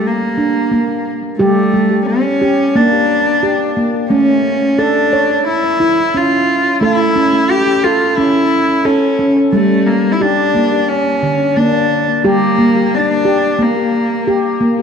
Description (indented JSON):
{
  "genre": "world meditative, meditative tuned percussion",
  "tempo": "88 BPM",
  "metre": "4/4",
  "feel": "swing 54% on 16ths",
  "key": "unclear",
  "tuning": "A4 = 441 Hz",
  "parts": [
    { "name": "warm cello", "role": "melody", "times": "0.0-14.6 s", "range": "A3 to G4", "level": "-14 LUFS", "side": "left 1 dB", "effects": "ping-pong delay" },
    { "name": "handpan", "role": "arpeggios", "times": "0.0-14.8 s", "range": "D3 to C#5", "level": "-14 LUFS", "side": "right 1 dB", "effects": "ping-pong delay" }
  ],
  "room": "wet scoring stage reverb, RT60 2.0 s",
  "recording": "dark, warm production",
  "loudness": "-11 LUFS",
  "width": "side -6 dB against mid",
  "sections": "0.0-14.8 A section",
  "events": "none",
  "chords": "0.0 Gm; 4.1 A; 9.5 Gm"
}